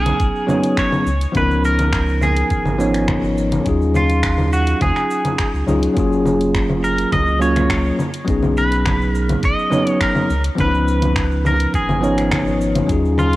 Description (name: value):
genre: sunset chillout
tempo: 104 BPM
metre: 4/4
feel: straight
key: unclear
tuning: A4 = 440 Hz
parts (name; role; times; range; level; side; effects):
- clean electric guitar; melody; 0.0-13.4 s; E#4 to D#5; -22 LUFS; equal; analog delay
- bell-like tine electric piano; accompaniment; 0.0-13.4 s; E#3 to C#5; -19 LUFS; equal; auto-pan, cassette tape
- warm sub bass; bass; 0.0-13.4 s; F#1 to D#2; -20 LUFS; equal; none
- smooth R&B drum kit; drums; 0.1-13.4 s; cabasa, congas, finger snaps, hi-hat; -23 LUFS; equal; cassette tape
- electronic kick drum; drums; 0.2-13.0 s; none; -22 LUFS; equal; cassette tape
room: light reverb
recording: home recording on cassette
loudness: -15 LUFS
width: side -17 dB against mid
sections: 0.0-13.4 A section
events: none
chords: 0.0 B69; 1.1 C#13; 3.7 D#m11; 6.0 F#maj9; 8.0 B69; 10.3 C#9